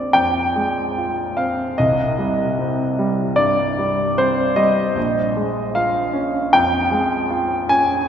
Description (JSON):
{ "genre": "classical, impressionist solo piano", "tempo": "76 BPM", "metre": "4/4", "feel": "rubato", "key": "unclear", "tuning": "A4 = 440 Hz", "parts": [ { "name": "warm grand piano", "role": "solo", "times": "0.0-8.1 s", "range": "Bb1 to Ab5", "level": "-16 LUFS", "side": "equal", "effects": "none" } ], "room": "wet church reverb, RT60 3.6 s", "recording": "recorded in a church or concert hall", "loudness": "-17 LUFS", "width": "side -8 dB against mid", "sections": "0.0-8.1 A section", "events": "none", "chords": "0.0 Bb9; 1.8 Cm; 5.0 Bbm7", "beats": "0.12 0.95 | 1.76 2.56 3.36 4.17 | 4.96 5.75 6.52 7.30" }